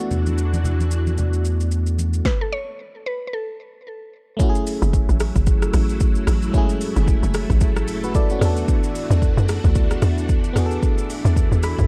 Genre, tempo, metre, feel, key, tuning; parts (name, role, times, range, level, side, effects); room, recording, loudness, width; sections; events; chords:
amapiano; 112 BPM; 4/4; swing 58% on 16ths; F# minor; A4 = 440 Hz
FM electric piano; accompaniment; 0.0-11.9 s; G#3 to B5; -29 LUFS; equal; chorus
string machine, full ensemble; sustained chords; 0.0-11.9 s; E3 to A4; -32 LUFS; equal; ensemble chorus, sidechain pumping
sub bass with octave; bass; 0.1-2.2 s; E2; -22 LUFS; equal
deep house drum kit; drums; 0.1-11.9 s; hi-hat, kick drum, rim click, shaker, snare drum; -23 LUFS; equal; overdrive
congas; percussion; 0.1-2.1 s; -32 LUFS; equal
mallet-like synth pluck; melody; 2.3-3.8 s; A4 to C#5; -31 LUFS; equal; chorus, digital delay
tight log drum bass; bass; 4.8-11.9 s; F#1 to F#2; -22 LUFS; equal
little or no reverb; dark, warm production; -20 LUFS; mono
0.0-4.4 A section; 4.4-11.9 B section
stop 2.3-4.4; drop 4.4-11.9; FM electric piano fill 7.9-8.7, 11.4-11.9
0.0 E9sus4; 4.4 F#m7; 8.4 E9sus4